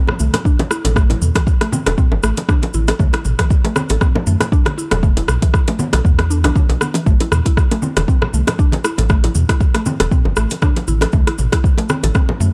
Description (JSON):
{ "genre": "afro house", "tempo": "118 BPM", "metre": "4/4", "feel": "swing 55% on 16ths", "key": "A dorian", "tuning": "A4 = 439 Hz", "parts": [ { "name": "mallet-like synth pluck", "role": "arpeggios", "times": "0.0-12.5 s", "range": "E3 to A4", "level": "-27 LUFS", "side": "equal", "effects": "chorus, sidechain pumping, analog delay" }, { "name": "deep house drum kit", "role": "drums", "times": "0.1-12.3 s", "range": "hi-hat, rim click, toms", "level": "-24 LUFS", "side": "equal", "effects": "studio ambience" }, { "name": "bongos", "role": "percussion", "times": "0.1-12.4 s", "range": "none", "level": "-25 LUFS", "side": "equal", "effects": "none" }, { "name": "congas", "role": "percussion", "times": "0.1-12.5 s", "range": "none", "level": "-27 LUFS", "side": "equal", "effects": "none" }, { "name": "round analog bass", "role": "bass", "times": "0.2-12.5 s", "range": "E1 to F#2", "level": "-19 LUFS", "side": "equal", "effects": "tube saturation, sidechain pumping" }, { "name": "cabasa", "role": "percussion", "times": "0.2-12.5 s", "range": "none", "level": "-34 LUFS", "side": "equal", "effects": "none" }, { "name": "electronic kick drum", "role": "drums", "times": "0.5-12.3 s", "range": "none", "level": "-16 LUFS", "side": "equal", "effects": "studio ambience" } ], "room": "small room ambience", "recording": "dry, gritty hardware recording, cassette tape", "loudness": "-16 LUFS", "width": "mono", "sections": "0.0-12.5 A section", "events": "filter sweep on synth pluck 0.0-12.5", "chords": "0.0 A5; 3.0 D7(no3) (rootless); 5.0 E5; 7.1 Am; 11.1 D7(no3) (rootless)" }